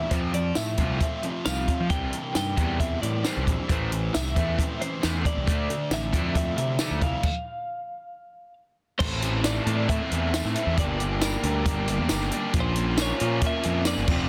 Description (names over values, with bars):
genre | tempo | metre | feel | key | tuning
indie rock | 135 BPM | 4/4 | straight | unclear | A4 = 440 Hz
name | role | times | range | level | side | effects
twelve-string electric guitar | melody | 0.0-14.3 s | Bb4 to G5 | -35 LUFS | equal | slapback echo
raw garage guitar | riff | 0.0-14.3 s | F2 to A4 | -34 LUFS | equal | overdrive
thick fuzz guitar | riff | 0.0-14.3 s | F2 to F4 | -35 LUFS | equal | distortion, subtle chorus, slapback echo
fuzz picked electric bass | bass | 0.1-14.3 s | F1 to F3 | -30 LUFS | equal | overdrive
compact cocktail drum kit | drums | 0.1-14.2 s | crash cymbal, hi-hat, kick drum, snare drum, tambourine | -30 LUFS | equal | none
room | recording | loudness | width
small room ambience | dense, heavily limited modern master | -26 LUFS | mono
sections
0.0-9.0 A section; 9.0-14.3 B section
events
stop 7.2-9.0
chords
0.1 F; 1.9 C; 3.7 Am; 5.5 Dmadd9; 7.2 N.C.; 9.0 Am; 10.8 Gm; 12.5 Bbm